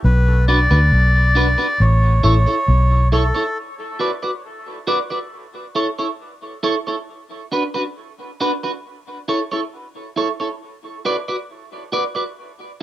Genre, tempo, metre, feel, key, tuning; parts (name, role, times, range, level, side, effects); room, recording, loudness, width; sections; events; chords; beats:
reggae; 68 BPM; 4/4; straight; B minor; A4 = 440 Hz
melodica; melody; 0.0-3.6 s; A4 to D5; -20 LUFS; left 1 dB; dub echo
vintage muted fingered electric bass; bass; 0.0-3.3 s; A1 to D2; -14 LUFS; equal
clean electric guitar; accompaniment; 0.5-12.2 s; D4 to D5; -22 LUFS; right 1 dB; analog chorus, dub echo
light reverb, small room ambience; -16 LUFS; side -14 dB against mid
0.0-3.6 A section; 3.6-12.8 B section
break 3.6-12.8
0.0 Bm; 1.8 A; 3.6 Bm; 5.3 A; 7.1 Bm; 8.8 A; 10.6 Bm
| 0.04 0.92 1.80 2.68 | 3.56 4.44 5.32 6.20 | 7.08 7.96 8.84 9.73 | 10.61 11.49